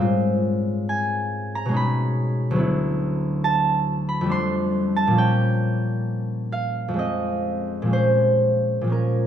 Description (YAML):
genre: classical, solo harp piece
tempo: 61-71 BPM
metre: 3/4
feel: rubato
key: unclear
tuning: A4 = 440 Hz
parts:
  - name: concert harp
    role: solo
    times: 0.0-9.3 s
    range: D2 to C6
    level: -20 LUFS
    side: equal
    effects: none
room: wet recital hall reverb, RT60 1.7 s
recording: dark, warm production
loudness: -20 LUFS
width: side -9 dB against mid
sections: 0.0-9.3 A section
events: none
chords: 0.0 Ab69; 1.7 B69; 2.6 D69; 4.3 F69; 5.2 Bbm6; 7.0 Fm7; 7.9 Bbm7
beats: | 0.03 0.89 1.75 | 2.60 3.45 4.31 | 5.17 6.06 6.97 | 7.93 8.91